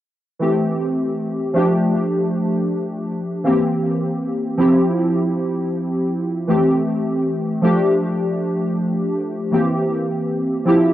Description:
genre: vaporwave.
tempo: 79 BPM.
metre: 4/4.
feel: straight.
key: F major.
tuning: A4 = 440 Hz.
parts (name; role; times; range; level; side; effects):
warbly lo-fi synth keys; accompaniment; 0.4-10.9 s; E3 to G4; -17 LUFS; equal; analog chorus, cassette tape, analog delay.
room: wet small room reverb, RT60 0.5 s.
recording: home recording on cassette.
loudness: -17 LUFS.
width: side -13 dB against mid.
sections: 0.4-10.9 A section.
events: none.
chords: 0.4 Am7; 1.6 F69; 3.5 C7; 4.6 Cadd11/F; 6.5 Am7; 7.6 F69; 9.5 C7.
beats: | 0.41 1.18 1.93 2.69 | 3.45 4.21 4.97 5.73 | 6.49 7.25 8.01 8.77 | 9.53 10.29.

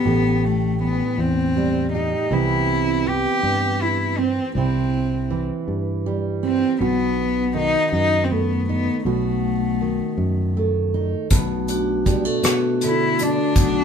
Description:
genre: acoustic folk-pop ballad.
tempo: 53 BPM (dotted quarters).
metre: 6/8.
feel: straight.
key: unclear.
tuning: A4 = 441 Hz.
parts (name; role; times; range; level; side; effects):
warm cello; melody; 0.0-13.8 s; A3 to G4; -22 LUFS; left 2 dB; none.
fingerpicked steel-string acoustic guitar; accompaniment; 0.0-13.8 s; A2 to G4; -24 LUFS; right 6 dB; none.
fingered electric bass; bass; 0.1-13.8 s; A1 to B2; -24 LUFS; left 1 dB; none.
vibraphone with medium hard mallets; arpeggios; 11.3-13.8 s; A3 to F#4; -22 LUFS; equal; none.
unplugged drum kit; drums; 11.3-13.7 s; hi-hat, kick drum, rim click; -20 LUFS; equal; none.
room: moderate studio reverb, RT60 0.8 s.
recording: band playing live in one room.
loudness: -18 LUFS.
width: side -7 dB against mid.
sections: 0.0-11.3 A section; 11.3-13.8 B section.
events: none.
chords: 0.0 Am7; 2.3 Cmaj7; 6.8 B7; 11.3 Bm7.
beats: | 0.04 1.17 | 2.30 3.43 | 4.55 5.68 | 6.80 7.92 | 9.05 10.18 | 11.31 12.43 | 13.56.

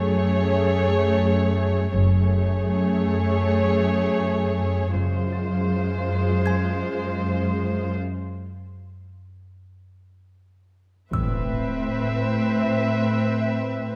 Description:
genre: cinematic, suspense film score.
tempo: 79 BPM.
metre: 4/4.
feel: straight.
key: unclear.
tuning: A4 = 440 Hz.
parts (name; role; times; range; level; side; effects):
muted chamber violin section; melody; 0.0-14.0 s; C5 to E5; -31 LUFS; equal; none.
muted studio violin section; second line; 0.0-14.0 s; F4 to B4; -33 LUFS; equal; none.
muted studio viola section; accompaniment; 0.0-14.0 s; Ab3 to C4; -31 LUFS; equal; none.
muted chamber cello section; bass; 0.0-14.0 s; F#2 to A2; -28 LUFS; equal; none.
marimba with medium mallets; riff; 0.1-14.0 s; F#2 to A3; -29 LUFS; equal; none.
muted chamber double bass section; bass; 1.9-5.7, 11.1-11.9 s; F#1 to A1; -29 LUFS; equal; none.
music box; texture; 6.5-13.4 s; Ab5 to Ab6; -38 LUFS; equal; none.
impact; sound effects; 11.1-14.0 s; none; -34 LUFS; equal; none.
room: light reverb.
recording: close, detailed microphones.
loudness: -23 LUFS.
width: mono.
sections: 0.0-11.1 A section; 11.1-14.0 B section.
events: break 8.0-11.1; impact 11.1-14.0.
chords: 0.0 F#madd9; 5.0 Fm/F#; 11.1 Amadd9.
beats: 0.44 1.19 | 1.93 2.68 3.43 4.19 | 4.95 5.71 6.47 7.23 | 8.00 8.79 9.57 10.35 | 11.13 11.90 12.67 13.44.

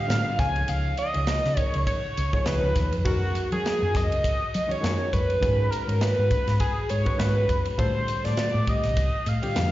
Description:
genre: electric jazz fusion.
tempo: 101 BPM.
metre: 4/4.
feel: swing 56% on 16ths.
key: G# dorian.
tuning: A4 = 440 Hz.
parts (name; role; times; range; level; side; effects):
overdriven synth lead; melody; 0.0-9.7 s; F#4 to G#5; -27 LUFS; equal; distortion, chorus, slapback echo.
barky reed electric piano; accompaniment; 0.0-9.7 s; A#2 to D#5; -33 LUFS; left 1 dB; slapback echo.
hollow-body short-scale fingered electric bass; bass; 0.1-9.7 s; C2 to F#3; -26 LUFS; equal; none.
crisp fusion drum kit; drums; 0.1-9.7 s; hi-hat, kick drum, ride cymbal, snare drum; -28 LUFS; equal; none.
room: studio ambience.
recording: live gig heard through the venue's PA, recital hall reverb, nothing above 7.5 kHz.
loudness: -22 LUFS.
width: side -15 dB against mid.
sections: 0.0-9.7 A section.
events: none.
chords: 0.4 C#69; 3.1 F#add9; 5.4 G#m7; 7.8 F7/A.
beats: 0.09 | 0.68 1.28 1.87 2.46 | 3.05 3.65 4.24 4.83 | 5.42 6.01 6.61 7.20 | 7.79 8.38 8.97 9.56.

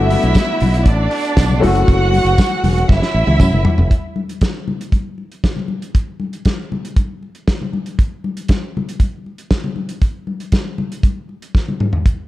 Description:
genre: disco.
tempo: 118 BPM.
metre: 4/4.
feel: straight.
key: F# minor.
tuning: A4 = 440 Hz.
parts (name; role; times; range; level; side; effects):
warm studio violin section; second line; 0.0-3.9 s; D4 to F#5; -19 LUFS; right 2 dB; none.
warm grand piano; accompaniment; 0.0-3.9 s; A3 to F#4; -22 LUFS; left 4 dB; none.
modern bright fingered electric bass; bass; 0.0-3.9 s; E1 to F#2; -15 LUFS; equal; none.
warm soul drum kit; drums; 0.1-12.2 s; hi-hat, kick drum, snare drum, toms; -16 LUFS; equal; none.
congas; percussion; 0.1-11.9 s; none; -25 LUFS; left 4 dB; none.
tambourine; percussion; 0.4-3.5 s; none; -36 LUFS; right 9 dB; none.
room: studio ambience.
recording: dark, warm production.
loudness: -15 LUFS.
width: side -16 dB against mid.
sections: 0.0-3.9 A section; 3.9-12.3 B section.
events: drum fill 2.9-3.9, 11.5-12.1.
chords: 0.0 Gmaj7 (rootless); 1.6 F#m7; 3.9 N.C..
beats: 0.36 0.87 1.38 | 1.88 2.39 2.90 3.41 | 3.91 4.42 4.93 5.44 | 5.95 6.46 6.97 7.48 | 7.99 8.50 9.00 9.51 | 10.02 10.53 11.04 11.55 | 12.05.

